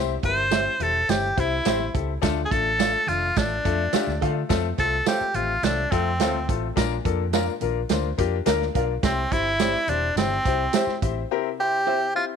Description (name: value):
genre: uptempo 1960s-style soul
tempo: 106 BPM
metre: 4/4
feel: straight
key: unclear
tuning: A4 = 441 Hz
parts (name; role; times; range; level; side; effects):
- clear grand piano; accompaniment; 0.0-12.3 s; Bb2 to D5; -27 LUFS; left 15 dB; none
- vintage muted fingered electric bass; bass; 0.0-11.2 s; E1 to D3; -28 LUFS; equal; none
- vintage drum kit; drums; 0.2-11.2 s; hi-hat, kick drum, snare drum; -26 LUFS; right 6 dB; none
- congas; percussion; 0.2-11.0 s; none; -40 LUFS; right 13 dB; none
- edgy tenor saxophone; melody; 0.3-12.3 s; C4 to C5; -24 LUFS; equal; none
- electric guitar through a small old amp; stabs; 0.5-12.0 s; G4 to F5; -30 LUFS; right 14 dB; none
- tambourine; percussion; 0.5-10.9 s; none; -38 LUFS; left 16 dB; none
room: light reverb, small room ambience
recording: 1960s-style stereo with parts hard left and right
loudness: -21 LUFS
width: side -7 dB against mid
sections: 0.0-12.4 A section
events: none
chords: 0.0 C; 2.2 Dm; 4.5 F; 6.8 Bb; 9.0 C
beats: 0.52 1.09 1.66 | 2.23 2.79 3.36 3.93 | 4.50 5.07 5.63 6.20 | 6.77 7.33 7.90 8.47 | 9.04 9.60 10.17 10.73 | 11.30 11.87